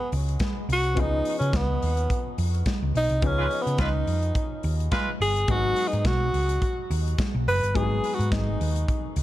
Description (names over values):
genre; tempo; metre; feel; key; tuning
disco; 106 BPM; 4/4; swing 56% on 16ths; G# dorian; A4 = 440 Hz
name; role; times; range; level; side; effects
breathy tenor saxophone; melody; 0.0-9.1 s; B3 to B4; -27 LUFS; right 1 dB; tape echo
warm baby grand piano; accompaniment; 0.0-9.2 s; E#3 to G#4; -35 LUFS; left 7 dB; none
hollow-body short-scale picked electric bass; bass; 0.1-9.2 s; F#1 to C#3; -25 LUFS; equal; none
modern studio drum kit; drums; 0.1-9.2 s; hi-hat, kick drum, snare drum; -29 LUFS; equal; none
bright horn section; stabs; 3.4-5.1 s; G#3 to B4; -32 LUFS; right 2 dB; none
room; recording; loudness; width
little or no reverb; dark, warm production; -22 LUFS; side -15 dB against mid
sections
0.0-9.2 A section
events
tenor saxophone solo 0.0-9.2; band accent 3.2-5.5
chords
0.0 G#m7; 1.0 C#9; 5.5 G#m7